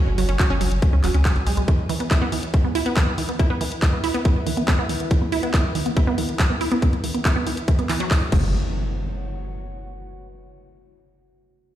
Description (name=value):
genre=psychedelic trance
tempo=140 BPM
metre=4/4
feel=straight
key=unclear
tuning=A4 = 440 Hz
part: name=warbly tape-like pad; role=texture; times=0.0-10.2 s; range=E4 to G#5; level=-35 LUFS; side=equal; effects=chorus, built-in reverb, phaser, sidechain pumping
part: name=round analog bass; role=bass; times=0.1-1.6, 8.3-8.5 s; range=E1 to C#2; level=-20 LUFS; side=equal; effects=none
part: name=wide unison pluck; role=riff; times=0.2-8.5 s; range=E3 to F#4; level=-24 LUFS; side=right 1 dB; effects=auto-pan, sidechain pumping, tape echo
part: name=drum and bass drum kit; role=drums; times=0.2-8.4 s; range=crash cymbal, handclaps, hi-hat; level=-28 LUFS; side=equal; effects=overdrive
part: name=electronic kick drum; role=drums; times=0.4-8.4 s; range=none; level=-18 LUFS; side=equal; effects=overdrive
part: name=impact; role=sound effects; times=8.3-10.0 s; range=none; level=-27 LUFS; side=equal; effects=none
room=light reverb, digital ambience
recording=played on a big sound system in a bare room, stone room reverb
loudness=-18 LUFS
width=side -12 dB against mid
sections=0.0-8.5 A section; 8.5-10.3 B section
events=fade-out on ambient pad 0.0-8.5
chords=0.0 E5; 8.3 F#5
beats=0.39 0.82 1.25 | 1.68 2.11 2.54 2.97 | 3.39 3.82 4.25 4.68 | 5.11 5.54 5.97 6.39 | 6.82 7.25 7.68 8.11 | 8.54 8.97 9.39 9.82